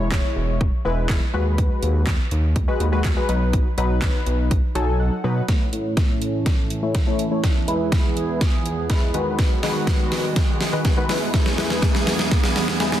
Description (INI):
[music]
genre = dance-pop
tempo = 123 BPM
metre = 4/4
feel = straight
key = E major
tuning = A4 = 439 Hz
[part]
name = warm analog keys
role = accompaniment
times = 0.0-13.0 s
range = D#3 to G#5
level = -25 LUFS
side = left 2 dB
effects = chorus, sidechain pumping, low-pass filter
[part]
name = chorused synth bass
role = bass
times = 0.0-5.4 s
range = E1 to B2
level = -21 LUFS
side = equal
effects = sidechain pumping
[part]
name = pop drum kit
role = drums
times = 0.1-13.0 s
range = handclaps, hi-hat, kick drum, snare drum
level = -20 LUFS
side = equal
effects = overdrive
[part]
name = chorused pulse-width pad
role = sustained chords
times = 5.5-13.0 s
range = E2 to A4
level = -27 LUFS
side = right 2 dB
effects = sidechain pumping, low-pass filter
[part]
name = riser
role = sound effects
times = 7.6-13.0 s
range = none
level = -31 LUFS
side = right 1 dB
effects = none
[sound]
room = light reverb, digital ambience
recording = dense, heavily limited modern master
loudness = -18 LUFS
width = side -12 dB against mid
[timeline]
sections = 0.0-5.5 A section; 5.5-13.0 B section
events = synth keys fill 4.5-5.5; silent gap 5.0-5.5; build-up 5.5-13.0; drum fill 5.5-13.0; filter sweep 5.5-13.0; riser 7.6-13.0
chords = 0.0 E; 1.3 G#m7/D#; 3.3 B; 5.5 A; 7.4 E; 9.1 G#m7/D#; 11.1 E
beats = 0.12 0.61 1.09 | 1.58 2.07 2.56 3.05 | 3.53 4.02 4.51 5.00 | 5.49 5.97 6.46 6.95 | 7.44 7.92 8.41 8.90 | 9.39 9.88 10.36 10.85 | 11.34 11.83 12.31 12.80